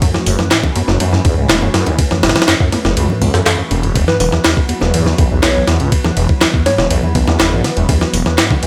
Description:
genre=breakbeat, breaks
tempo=122 BPM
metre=4/4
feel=straight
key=unclear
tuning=A4 = 438 Hz
part: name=phased analog pad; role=sustained chords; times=0.0-8.7 s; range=E3 to B4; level=-25 LUFS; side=equal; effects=phaser, chorus, sidechain pumping
part: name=deep acid bass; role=riff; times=0.0-8.7 s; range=E2 to F#3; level=-21 LUFS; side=equal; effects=none
part: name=breakbeat sampler-style drum kit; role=drums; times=0.0-8.7 s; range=hi-hat, kick drum, ride cymbal, snare drum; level=-17 LUFS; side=equal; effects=none
part: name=bongos and congas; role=percussion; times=0.0-8.7 s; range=none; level=-26 LUFS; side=equal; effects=none
part: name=phased detuned saw bass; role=bass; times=0.3-8.2 s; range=E1 to F#2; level=-19 LUFS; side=equal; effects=phaser
part: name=electronic handclaps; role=drums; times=0.5-8.5 s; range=none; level=-24 LUFS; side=equal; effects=none
part: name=soft struck synth lead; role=melody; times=4.1-6.9 s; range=B4 to C#5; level=-22 LUFS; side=equal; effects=chorus, old record sound, dub echo
room=light reverb, digital ambience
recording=none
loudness=-14 LUFS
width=mono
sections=0.0-8.7 A section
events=filter sweep on acid bass 0.0-8.7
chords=0.0 F#m7; 4.0 Esus2

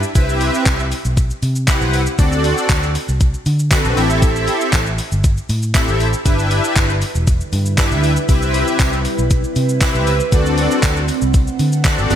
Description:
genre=dance-pop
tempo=118 BPM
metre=4/4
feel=straight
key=unclear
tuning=A4 = 441 Hz
part: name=vintage muted fingered electric bass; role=bass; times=0.0-12.2 s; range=E1 to D3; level=-18 LUFS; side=equal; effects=sidechain pumping
part: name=gated 80s digital drum machine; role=drums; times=0.0-12.2 s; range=handclaps, hi-hat, kick drum, shaker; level=-17 LUFS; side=equal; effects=gated reverb
part: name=big bright polysynth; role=accompaniment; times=0.1-12.2 s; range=B3 to F#5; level=-19 LUFS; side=left 1 dB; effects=analog chorus, sidechain pumping
part: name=tambourine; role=percussion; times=0.2-12.2 s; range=none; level=-35 LUFS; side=right 8 dB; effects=none
part: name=ethereal airy pad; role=sustained chords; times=7.1-12.2 s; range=D3 to F#5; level=-23 LUFS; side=right 3 dB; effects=ensemble chorus, built-in reverb, phaser, sidechain pumping
room=moderate lush hall reverb, RT60 1.7 s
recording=bright 1980s-style digital production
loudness=-14 LUFS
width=side -10 dB against mid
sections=0.0-12.2 A section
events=none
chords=0.2 Cmaj7; 2.2 D7; 4.0 Am7; 6.3 G6; 8.3 Cmaj7; 10.3 D7

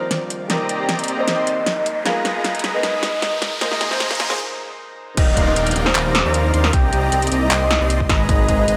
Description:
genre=future bass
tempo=154 BPM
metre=4/4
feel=half-time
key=Eb major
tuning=A4 = 440 Hz
part: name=soft octave-layered synth lead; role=melody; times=0.0-8.8 s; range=Ab4 to G5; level=-26 LUFS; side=equal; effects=chorus, phaser, sidechain pumping, delay
part: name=felt-muted upright piano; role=accompaniment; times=0.0-5.2 s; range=F3 to C5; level=-31 LUFS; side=equal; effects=sidechain pumping, delay
part: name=airy breathy pad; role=sustained chords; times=0.0-8.8 s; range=Bb2 to Bb5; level=-36 LUFS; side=equal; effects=none
part: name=riser and downlifter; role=sound effects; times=0.3-8.3 s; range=none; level=-31 LUFS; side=equal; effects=none
part: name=pop drum kit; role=drums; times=0.1-8.8 s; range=crash cymbal, handclaps, hi-hat, snare drum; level=-24 LUFS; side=equal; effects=none
part: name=dense compressed supersaw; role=riff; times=0.5-8.8 s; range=Ab3 to C6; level=-27 LUFS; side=equal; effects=sidechain pumping, low-pass filter
part: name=detuned saw bass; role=bass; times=5.2-8.8 s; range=Eb1 to Eb2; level=-22 LUFS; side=equal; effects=chorus, tube saturation, sidechain pumping
part: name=electronic kick drum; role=drums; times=5.2-8.6 s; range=none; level=-20 LUFS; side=equal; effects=none
room=light reverb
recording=high-pass filter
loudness=-19 LUFS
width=mono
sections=0.0-5.2 A section; 5.2-8.8 B section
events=build-up 0.0-5.2; drum fill 0.0-4.4; filter sweep on soft synth lead 0.0-5.2; filter sweep 0.0-5.2; riser 0.3-4.4; break 4.4-5.2; drop 5.2-8.8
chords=0.5 Cm7; 1.9 Abmadd9; 3.6 Bb7sus4; 5.2 Ebmaj9; 6.7 Cm7; 8.1 Abmadd9

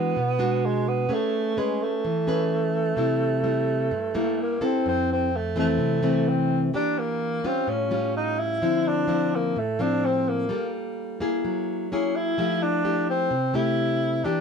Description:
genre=bossa nova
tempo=128 BPM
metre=4/4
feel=straight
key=F major from 4.9 s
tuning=A4 = 441 Hz
part: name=breathy tenor saxophone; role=melody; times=0.0-14.4 s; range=G#3 to E4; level=-25 LUFS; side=right 2 dB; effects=none
part: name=nylon-string guitar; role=accompaniment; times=0.0-14.4 s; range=F2 to B4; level=-24 LUFS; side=left 2 dB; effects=none
room=light reverb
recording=none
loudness=-22 LUFS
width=side -6 dB against mid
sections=0.0-4.9 A section; 4.9-14.4 B section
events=none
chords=0.0 E9; 1.1 Amaj9; 3.0 C7; 4.9 Fmaj7; 6.7 Em7b5; 7.7 Aaug7; 8.6 Dm9; 10.5 Gm9; 11.4 Gb9; 12.4 Fmaj9

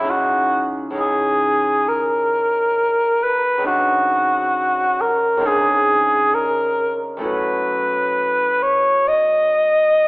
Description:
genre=classical, impressionist duo for cor anglais and harp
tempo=67 BPM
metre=4/4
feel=rubato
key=unclear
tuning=A4 = 440 Hz
part: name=mellow cor anglais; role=melody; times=0.0-10.1 s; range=E4 to D#5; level=-16 LUFS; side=equal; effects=none
part: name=concert harp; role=accompaniment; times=0.0-10.1 s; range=B1 to F#4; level=-26 LUFS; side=equal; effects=none
room=wet recital hall reverb, RT60 1.4 s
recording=recorded in a church or concert hall, telephone sound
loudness=-15 LUFS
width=side -24 dB against mid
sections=0.0-10.1 A section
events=none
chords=0.1 C#madd9; 3.7 G#7#11/C#; 7.3 B11

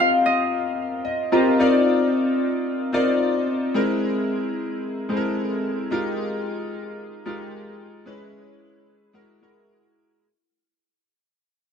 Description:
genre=pop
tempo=111 BPM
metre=4/4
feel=swing 54% on 16ths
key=unclear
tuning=A4 = 441 Hz
part: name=Celtic harp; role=melody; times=0.0-2.0 s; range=Eb5 to G5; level=-22 LUFS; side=left 2 dB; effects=ping-pong delay
part: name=clear concert grand piano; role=accompaniment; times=0.0-10.2 s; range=G#3 to Bb5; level=-21 LUFS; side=left 1 dB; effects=analog chorus
room=moderate plate reverb, RT60 2.5 s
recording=none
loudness=-20 LUFS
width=side -7 dB against mid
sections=0.0-1.6 A section; 1.6-10.2 B section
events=grand piano fill 0.8-1.6; fade-out 1.6-10.2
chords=0.0 Eb69; 1.6 Cm11; 3.8 Caug7; 5.9 Fm11; 8.1 Dbm7; 9.1 Gb9

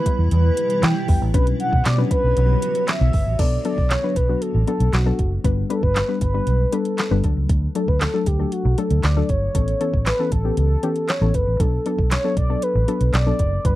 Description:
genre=dance-pop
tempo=117 BPM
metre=4/4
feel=straight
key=B minor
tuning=A4 = 440 Hz
part: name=mellow horn-like synth lead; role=melody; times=0.0-13.8 s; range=F#4 to G5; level=-24 LUFS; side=equal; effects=chorus
part: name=granular cloud pad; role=sustained chords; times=0.0-3.4 s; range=B2 to C#5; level=-29 LUFS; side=right 1 dB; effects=built-in reverb, sidechain pumping
part: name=soft round pluck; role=accompaniment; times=0.1-13.8 s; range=E3 to B4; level=-26 LUFS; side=left 5 dB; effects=chorus, sidechain pumping
part: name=smooth R&B drum kit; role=drums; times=0.1-13.8 s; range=crash cymbal, handclaps, hi-hat, kick drum, snare drum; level=-22 LUFS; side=equal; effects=none
part: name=vintage muted fingered electric bass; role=bass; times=0.2-13.8 s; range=F#1 to E3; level=-19 LUFS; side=equal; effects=sidechain pumping
room=little or no reverb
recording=dry, close 1970s-style studio recording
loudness=-17 LUFS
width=side -16 dB against mid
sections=0.0-3.4 A section; 3.4-13.8 B section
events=none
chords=0.0 Em; 1.3 Bmadd9; 3.4 Bm7; 5.4 G; 7.2 D; 9.5 Aadd9; 11.6 Bm7

